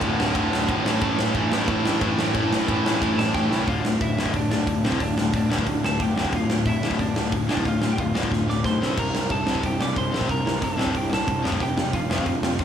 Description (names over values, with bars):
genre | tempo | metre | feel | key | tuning
punk rock | 181 BPM | 4/4 | straight | D minor | A4 = 440 Hz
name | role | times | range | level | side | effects
distorted electric guitar | riff | 0.0-12.6 s | D2 to C4 | -26 LUFS | left 5 dB | distortion
high-gain distorted guitar | riff | 0.0-3.7 s | D2 to A3 | -30 LUFS | right 2 dB | none
overdriven electric guitar | riff | 0.0-3.7 s | D2 to A3 | -28 LUFS | right 13 dB | none
fuzz picked electric bass | bass | 0.0-12.6 s | D1 to F2 | -28 LUFS | equal | overdrive
big rock drum kit | drums | 0.0-12.6 s | crash cymbal, hi-hat, kick drum, ride cymbal, snare drum | -25 LUFS | right 1 dB | none
lightly driven lead guitar | melody | 3.2-12.6 s | C4 to D6 | -29 LUFS | right 3 dB | digital delay
room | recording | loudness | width
little or no reverb | none | -20 LUFS | side -9 dB against mid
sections
0.0-3.7 A section; 3.7-12.6 B section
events
drum fill 3.3-3.7, 8.3-9.0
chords
0.0 D5; 0.8 A5; 3.7 Dm; 8.8 C5; 11.4 F5